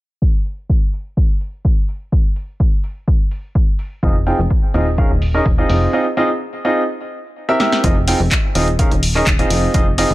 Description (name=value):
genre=piano house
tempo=126 BPM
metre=4/4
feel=straight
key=F minor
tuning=A4 = 436 Hz
part: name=electronic kick drum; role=drums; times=0.2-9.8 s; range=none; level=-16 LUFS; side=equal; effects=none
part: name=punchy analog drum machine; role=drums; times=0.5-10.1 s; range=handclaps, hi-hat, snare drum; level=-21 LUFS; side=equal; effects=none
part: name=clear upright piano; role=riff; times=4.0-10.1 s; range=C4 to G5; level=-17 LUFS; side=right 1 dB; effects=sidechain pumping, tape echo
part: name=plucky analog bass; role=bass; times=4.0-10.1 s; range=Eb1 to F1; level=-18 LUFS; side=equal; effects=sidechain pumping
room=little or no reverb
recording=low-pass filter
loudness=-14 LUFS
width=side -17 dB against mid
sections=0.2-7.8 A section; 7.8-10.1 B section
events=filter sweep 0.2-7.8; break 5.9-7.8; drum fill 7.6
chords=0.2 N.C.; 4.0 Fm7; 5.0 Eb7sus4; 5.7 Fm7; 6.9 C7; 7.8 Fm7; 8.8 Eb7sus4; 9.5 Fm7